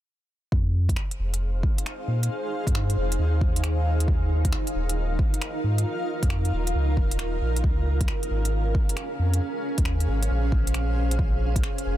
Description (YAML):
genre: future garage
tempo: 135 BPM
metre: 4/4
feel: swing 66% on 16ths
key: unclear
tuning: A4 = 443 Hz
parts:
  - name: granular cloud pad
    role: sustained chords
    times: 1.3-12.0 s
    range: Db4 to F5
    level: -30 LUFS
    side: equal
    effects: built-in reverb, sidechain pumping
  - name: warm sub bass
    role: bass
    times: 0.5-12.0 s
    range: Eb1 to Bb2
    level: -24 LUFS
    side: equal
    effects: sidechain pumping
  - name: electronic kick drum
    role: drums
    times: 0.5-11.6 s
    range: none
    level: -24 LUFS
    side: equal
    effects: overdrive
  - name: organic electronic drum kit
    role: drums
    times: 0.9-11.8 s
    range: finger snaps, hi-hat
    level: -35 LUFS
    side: equal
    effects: soft clipping on snare
room: little or no reverb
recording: dense, heavily limited modern master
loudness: -22 LUFS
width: side -13 dB against mid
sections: 0.5-12.0 A section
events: none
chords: 0.5 Fm7; 4.1 Ebsus2; 7.6 Db6; 11.2 Bbm7